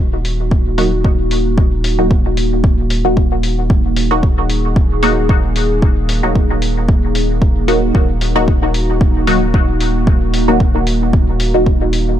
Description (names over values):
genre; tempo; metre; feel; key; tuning
dub techno; 113 BPM; 4/4; swing 54% on 16ths; Eb minor; A4 = 440 Hz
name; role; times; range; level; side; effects
dark analog pad; sustained chords; 0.1-12.2 s; Bb3 to Ab4; -20 LUFS; right 1 dB; chorus, phaser, sidechain pumping
pure sine sub bass; bass; 0.0-12.2 s; Eb1; -18 LUFS; equal; sidechain pumping
electronic hi-hat; drums; 0.2-12.0 s; none; -24 LUFS; left 3 dB; small room reverb
electronic kick drum; drums; 0.5-11.8 s; none; -13 LUFS; equal; overdrive, small room reverb
filtered dub chord stab; stabs; 0.8-11.7 s; Gb3 to Gb4; -19 LUFS; left 1 dB; chorus, phaser, sidechain pumping, dub echo
filtered dub chord stab; riff; 8.4-10.9 s; Eb4 to Gb5; -26 LUFS; left 3 dB; none
room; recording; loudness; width
little or no reverb; none; -12 LUFS; side -11 dB against mid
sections
0.0-12.2 A section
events
none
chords
0.0 Ebm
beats
0.51 1.04 | 1.58 2.11 2.64 3.17 | 3.70 4.23 4.76 5.29 | 5.82 6.35 6.88 7.42 | 7.95 8.48 9.01 9.54 | 10.07 10.60 11.13 11.66 | 12.20